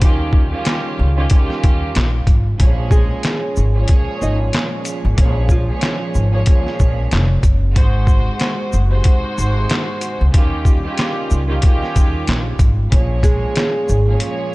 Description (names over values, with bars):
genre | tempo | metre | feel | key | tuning
hip hop, boom-bap hip-hop | 93 BPM | 4/4 | swing 57% on 16ths | Bb minor | A4 = 439 Hz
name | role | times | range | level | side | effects
warm studio string section | accompaniment | 0.0-14.5 s | Ab2 to Db5 | -23 LUFS | right 2 dB | cassette tape, high-pass filter, low-pass filter
dark analog pad | sustained chords | 0.0-14.5 s | Bb2 to Gb4 | -31 LUFS | equal | chorus, high-pass filter, low-pass filter
upright bass | bass | 0.0-14.1 s | F1 to Eb2 | -17 LUFS | equal | none
trip hop sampler-style drum kit | drums | 0.0-14.4 s | handclaps, hi-hat, kick drum, shaker, snare drum | -15 LUFS | equal | none
nylon-string guitar | melody | 2.9-6.6, 13.2-14.2 s | F3 to Eb5 | -24 LUFS | right 1 dB | high-pass filter, low-pass filter, tape echo
room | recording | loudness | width
little or no reverb | none | -14 LUFS | side -21 dB against mid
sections
0.0-12.9 A section; 12.9-14.5 B section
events
none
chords
0.0 Eb9; 2.6 Bbm7; 7.8 Ab7; 10.3 Eb9; 12.9 Bbm7